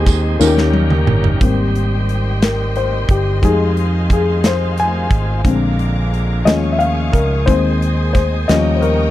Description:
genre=slow gospel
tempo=59 BPM (dotted quarters)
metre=6/8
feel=straight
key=Ab major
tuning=A4 = 440 Hz
part: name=bright wooden-headed alto flute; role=melody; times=0.0-0.8 s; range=G4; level=-25 LUFS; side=right 3 dB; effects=none
part: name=dark grand piano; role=accompaniment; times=0.0-9.1 s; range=D3 to Ab5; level=-18 LUFS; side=left 4 dB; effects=none
part: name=bright tonewheel organ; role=sustained chords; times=0.0-9.1 s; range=Db3 to Ab4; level=-26 LUFS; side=right 2 dB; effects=fast rotary speaker, overdrive
part: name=fingered electric bass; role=bass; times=0.0-9.1 s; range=G1 to F2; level=-17 LUFS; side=right 1 dB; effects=none
part: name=modern studio drum kit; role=drums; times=0.1-9.0 s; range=hi-hat, kick drum, ride cymbal, snare drum, toms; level=-16 LUFS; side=right 1 dB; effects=none
part: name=tambourine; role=percussion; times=0.1-0.7 s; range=none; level=-25 LUFS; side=right 20 dB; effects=none
part: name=clear studio string section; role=sustained chords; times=1.4-9.1 s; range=Eb5 to Eb6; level=-30 LUFS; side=left 4 dB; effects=none
room=small room ambience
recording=dry, close 1970s-style studio recording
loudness=-13 LUFS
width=side -14 dB against mid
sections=0.0-1.4 A section; 1.4-9.1 B section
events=drum fill 0.4-1.4; grand piano solo 1.4-9.1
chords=0.4 Eb7; 1.4 Abmaj7; 3.4 Fm7; 5.5 Bb7; 6.5 Eb9sus4; 7.5 Ab/Eb; 8.5 Eb7

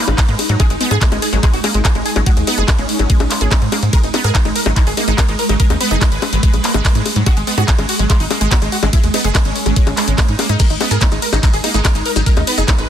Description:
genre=psychedelic trance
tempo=144 BPM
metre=4/4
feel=straight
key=G# minor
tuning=A4 = 444 Hz
part: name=supersaw stab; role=melody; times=0.0-12.9 s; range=G#3 to B4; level=-23 LUFS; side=equal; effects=phaser, sidechain pumping, tape echo
part: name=swarming drone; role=sustained chords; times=0.0-12.9 s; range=G#3 to D#4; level=-23 LUFS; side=right 2 dB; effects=built-in reverb, sidechain pumping
part: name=wide unison pluck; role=riff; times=0.0-12.9 s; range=F#3 to G#4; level=-23 LUFS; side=moving between left 2 dB and right 5 dB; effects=auto-pan, sidechain pumping, digital delay
part: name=tight sequencer bass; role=bass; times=0.1-12.9 s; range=F#1 to G#2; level=-18 LUFS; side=equal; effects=tube saturation
part: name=drum and bass drum kit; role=drums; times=0.1-12.9 s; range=bongos, crash cymbal, handclaps, hi-hat, ride cymbal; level=-19 LUFS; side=left 3 dB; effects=none
part: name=electronic kick drum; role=drums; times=0.2-12.8 s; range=none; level=-14 LUFS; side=equal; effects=none
part: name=maracas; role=percussion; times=10.6-12.9 s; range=none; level=-27 LUFS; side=left 4 dB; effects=none
room=digital ambience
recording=dense, heavily limited modern master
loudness=-12 LUFS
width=side -10 dB against mid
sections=0.0-12.9 A section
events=none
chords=0.0 G#5

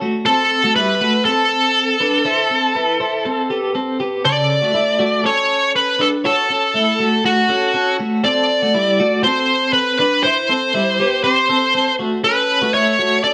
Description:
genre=indie pop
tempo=120 BPM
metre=4/4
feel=straight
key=D major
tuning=A4 = 439 Hz
part: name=twelve-string electric guitar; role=arpeggios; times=0.0-13.3 s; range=C#3 to C#5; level=-22 LUFS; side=equal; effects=tremolo
part: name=smooth overdriven lead guitar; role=melody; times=0.3-13.3 s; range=F#4 to D5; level=-18 LUFS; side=equal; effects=none
room=moderate studio reverb, RT60 0.8 s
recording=none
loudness=-16 LUFS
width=mono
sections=0.0-13.3 A section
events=none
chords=0.3 Am7; 4.2 Dmaj7; 8.2 Am7; 12.2 Dmaj7 (rootless)

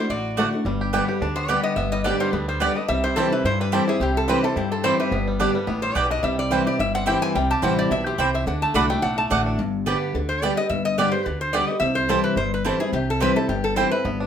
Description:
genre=bluegrass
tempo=215 BPM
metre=4/4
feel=swing 54% on 8ths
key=unclear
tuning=A4 = 440 Hz
part: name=lap resonator guitar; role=melody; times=0.0-14.2 s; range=G4 to B5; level=-25 LUFS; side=left 1 dB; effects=none
part: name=picked old ladder-braced acoustic guitar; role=accompaniment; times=0.0-14.3 s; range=G2 to G4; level=-24 LUFS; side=left 1 dB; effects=none
part: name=upright bass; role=bass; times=0.1-14.3 s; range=G1 to G2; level=-28 LUFS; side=equal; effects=none
part: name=bluegrass banjo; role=melody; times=0.4-9.6, 14.1-14.3 s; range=E3 to G4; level=-30 LUFS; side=right 2 dB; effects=none
part: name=mandolin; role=stabs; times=0.4-13.9 s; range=A3 to G5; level=-25 LUFS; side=right 6 dB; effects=none
room=wet studio reverb, RT60 0.6 s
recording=none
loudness=-20 LUFS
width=side -8 dB against mid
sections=0.7-9.6 A section; 9.6-14.3 A section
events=none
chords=0.0 D; 0.7 G; 2.9 C; 5.1 G; 6.2 C; 8.5 D; 9.6 G; 11.8 C

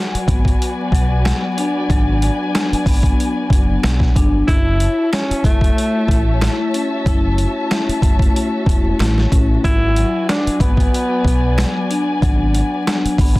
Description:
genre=hip hop, boom-bap hip-hop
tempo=93 BPM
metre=4/4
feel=swing 55% on 16ths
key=unclear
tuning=A4 = 441 Hz
part: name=vibraphone with soft mallets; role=accompaniment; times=0.0-13.4 s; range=F#3 to E4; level=-21 LUFS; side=left 2 dB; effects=high-pass filter, low-pass filter
part: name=warm studio string section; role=sustained chords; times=0.0-13.4 s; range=F#4 to A5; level=-26 LUFS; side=left 2 dB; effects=high-pass filter, low-pass filter
part: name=deep dub fingered electric bass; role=bass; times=0.1-13.4 s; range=E1 to B1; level=-18 LUFS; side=equal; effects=none
part: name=boom bap sampler-style drum kit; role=drums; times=0.1-13.4 s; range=hi-hat, kick drum, snare drum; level=-17 LUFS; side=equal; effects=none
part: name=finger snaps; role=percussion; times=1.3-13.0 s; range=none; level=-34 LUFS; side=right 4 dB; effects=none
part: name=breathy tenor saxophone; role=melody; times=4.5-11.7 s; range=A3 to E4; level=-20 LUFS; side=equal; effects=high-pass filter, low-pass filter, tape echo
room=studio ambience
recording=dense, heavily limited modern master, vinyl crackle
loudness=-14 LUFS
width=side -20 dB against mid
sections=0.0-13.4 A section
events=break 0.0-4.5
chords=0.0 G#m7b5; 4.5 F#m7; 9.6 G#m7b5

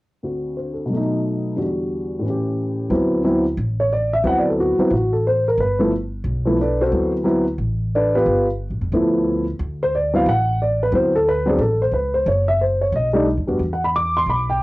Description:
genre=jazz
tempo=179 BPM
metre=4/4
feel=swing 62% on 8ths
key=D mixolydian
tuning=A4 = 440 Hz
part: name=dark upright piano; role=melody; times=0.2-14.6 s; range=D2 to D6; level=-18 LUFS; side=equal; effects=none
part: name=upright bass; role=bass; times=2.9-14.6 s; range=F1 to F2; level=-23 LUFS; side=equal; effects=transformer saturation
room=moderate small room reverb, RT60 0.5 s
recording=home recording on cassette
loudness=-17 LUFS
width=side -20 dB against mid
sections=0.2-2.9 A section; 2.9-14.6 B section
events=none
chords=0.2 D7; 0.9 B7; 1.6 Em9; 2.2 A7; 2.9 D13; 5.6 Gadd9; 6.9 D13; 8.3 G13; 9.6 D13; 12.3 F#5; 12.9 Baug; 13.6 E5

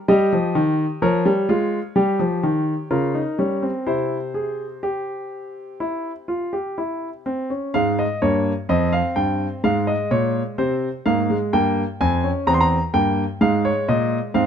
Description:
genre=classical, baroque-style 3-part fugue for grand piano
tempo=64 BPM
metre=4/4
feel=straight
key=F minor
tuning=A4 = 440 Hz
part: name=warm grand piano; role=solo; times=0.0-14.5 s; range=E2 to C6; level=-19 LUFS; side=equal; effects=none
room=light reverb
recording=close, detailed microphones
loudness=-19 LUFS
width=side -8 dB against mid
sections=0.0-7.7 A section; 7.7-14.5 B section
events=none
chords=0.1 Gm7b5; 3.9 C; 7.7 Fm; 9.6 Fm/Ab; 11.5 C7; 13.4 Fm/Ab

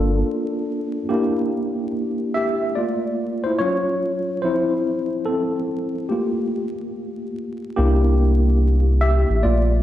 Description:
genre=lo-fi hip hop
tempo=72 BPM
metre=4/4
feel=swing 64% on 16ths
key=G dorian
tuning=A4 = 440 Hz
part: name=barky tine electric piano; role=accompaniment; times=0.0-9.8 s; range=F3 to E5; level=-21 LUFS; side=equal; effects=overdrive, fast stereo tremolo, cassette tape
part: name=soft dub sub bass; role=bass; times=0.0-0.2, 7.8-9.8 s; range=G1 to C2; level=-17 LUFS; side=equal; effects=none
room=wet lush hall reverb, RT60 1.6 s, digital ambience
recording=dreamy mix soaked in reverb, vinyl crackle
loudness=-19 LUFS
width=side -12 dB against mid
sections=0.0-1.1 A section; 1.1-9.8 B section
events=tine electric piano solo 1.1-9.8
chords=0.0 Gm7; 1.1 Gm6/Bb; 2.8 Bbmaj9#11/A; 3.6 C#add11/F#; 4.4 Fmaj7; 6.1 Gm7; 7.8 C7

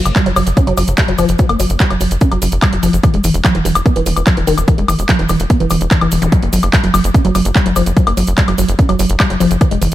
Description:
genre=psychedelic trance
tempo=146 BPM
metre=4/4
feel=straight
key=unclear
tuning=A4 = 439 Hz
part: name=tight sequencer bass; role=bass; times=0.1-9.9 s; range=E1 to G1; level=-16 LUFS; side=equal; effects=none
part: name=techno drum kit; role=drums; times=0.1-9.9 s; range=handclaps, hi-hat, woodblock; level=-19 LUFS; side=left 1 dB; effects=none
part: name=cabasa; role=percussion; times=0.1-9.9 s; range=none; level=-28 LUFS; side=left 4 dB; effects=none
part: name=woody wave-folded pluck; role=riff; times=0.2-9.9 s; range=D#3 to C#4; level=-16 LUFS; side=moving between left 4 dB and right 4 dB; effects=chorus, auto-pan, cassette tape, sidechain pumping, ping-pong delay
part: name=electronic kick drum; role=drums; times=0.2-9.7 s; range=none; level=-12 LUFS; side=equal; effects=none
part: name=zap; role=sound effects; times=6.2-6.3 s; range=none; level=-32 LUFS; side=equal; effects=none
room=light reverb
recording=none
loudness=-11 LUFS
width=side -14 dB against mid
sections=0.0-9.9 A section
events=none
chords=0.0 F#5; 3.0 E5; 6.3 F#5

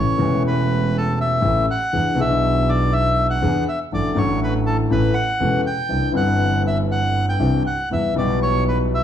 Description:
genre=tango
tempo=121 BPM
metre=4/4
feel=rubato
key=unclear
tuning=A4 = 441 Hz
part: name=bandoneon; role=melody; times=0.0-9.0 s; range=A4 to G5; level=-22 LUFS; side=equal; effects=plate reverb
part: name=warm concert grand piano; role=accompaniment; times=0.0-9.0 s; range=E1 to A4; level=-21 LUFS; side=left 3 dB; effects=none
part: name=clear double bass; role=bass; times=0.0-9.0 s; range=E1 to E2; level=-22 LUFS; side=right 3 dB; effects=none
room=wet large studio reverb, RT60 0.7 s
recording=heard from further back in the room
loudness=-17 LUFS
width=side -10 dB against mid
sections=0.0-9.0 A section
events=none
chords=0.0 A7; 1.9 E7; 3.9 D/A; 4.9 Aadd9; 5.9 Cadd9; 7.9 Em

